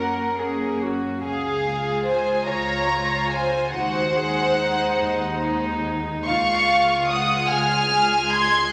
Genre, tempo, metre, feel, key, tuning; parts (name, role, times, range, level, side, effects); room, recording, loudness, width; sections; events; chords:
classical, slow romantic movement for string orchestra; 48 BPM (dotted quarters); 6/8; rubato; Db major; A4 = 441 Hz
dark studio violin section; melody; 0.0-8.7 s; F5 to Ab6; -26 LUFS; equal
warm studio violin section; second line; 0.0-8.7 s; Ab4 to C6; -25 LUFS; equal
warm studio viola section; accompaniment; 0.0-8.7 s; Ab3 to F4; -32 LUFS; equal
dark studio double bass section; bass; 0.0-8.6 s; Db2 to Gb2; -35 LUFS; equal
warm studio cello section; bass; 0.0-8.7 s; Eb4 to Bb4; -31 LUFS; equal
wet scoring stage reverb, RT60 1.8 s; -22 LUFS; mono
0.0-8.7 A section
0.0 Gb; 1.2 Db; 3.7 Ab7/Eb; 6.3 Db